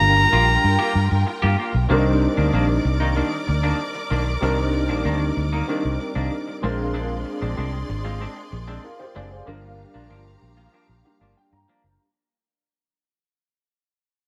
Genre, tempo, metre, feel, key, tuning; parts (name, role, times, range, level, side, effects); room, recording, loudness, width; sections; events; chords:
pop; 95 BPM; 4/4; straight; C minor; A4 = 440 Hz
bright soprano saxophone; melody; 0.0-1.3 s; Bb5; -21 LUFS; equal; delay
warm grand piano; accompaniment; 0.0-12.0 s; G3 to Bb5; -28 LUFS; equal; ensemble chorus
rich studio string section; sustained chords; 0.0-12.0 s; F4 to D6; -33 LUFS; equal
vintage muted fingered electric bass; bass; 0.0-12.0 s; F#1 to G2; -24 LUFS; equal
semi-hollow electric guitar; riff; 0.2-11.9 s; Eb3 to G4; -31 LUFS; equal; lush chorus
light reverb, small room ambience; -21 LUFS; mono
0.0-1.9 A section; 1.9-12.0 B section
fade-out 1.9-12.0; grand piano fill 10.7-12.0
0.0 Gm7; 1.9 Cm9; 6.6 Bb9; 9.5 Gm7